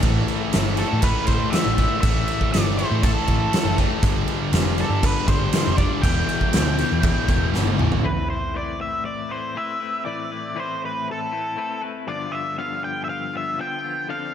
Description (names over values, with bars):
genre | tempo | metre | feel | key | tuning
quiet-loud alternative rock | 120 BPM | 4/4 | straight | A minor | A4 = 440 Hz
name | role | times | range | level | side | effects
overdriven semi-hollow guitar | riff | 0.0-8.0 s | E2 to A3 | -27 LUFS | left 10 dB | slapback echo
scooped high-gain guitar | riff | 0.0-8.0 s | E2 to A3 | -30 LUFS | right 10 dB | distortion, slapback echo
scooped high-gain guitar | riff | 0.0-8.0 s | E2 to A3 | -32 LUFS | equal | distortion, slapback echo
hollow-body short-scale picked electric bass | bass | 0.0-8.0 s | E1 to A2 | -24 LUFS | right 1 dB | none
huge arena drum kit | drums | 0.0-8.0 s | crash cymbal, kick drum, snare drum, toms | -22 LUFS | equal | none
octave-fuzz lead guitar | melody | 0.8-14.3 s | A4 to G5 | -27 LUFS | equal | distortion, slapback echo, tape echo
clean electric guitar | arpeggios | 8.0-14.3 s | G2 to B4 | -30 LUFS | left 7 dB | tremolo, slapback echo, tape echo
room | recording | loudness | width
light reverb, studio ambience | none | -20 LUFS | side -9 dB against mid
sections
0.0-8.0 A section; 8.0-14.3 B section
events
drum fill 7.5-8.0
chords
0.0 A5; 4.0 G5; 6.0 Em7; 8.0 Amadd9; 12.1 G7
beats
| 0.04 0.54 1.04 1.54 | 2.04 2.54 3.04 3.54 | 4.04 4.54 5.04 5.54 | 6.04 6.54 7.04 7.54 | 8.04 8.54 9.05 9.55 | 10.05 10.56 11.06 11.57 | 12.07 12.57 13.08 13.58 | 14.09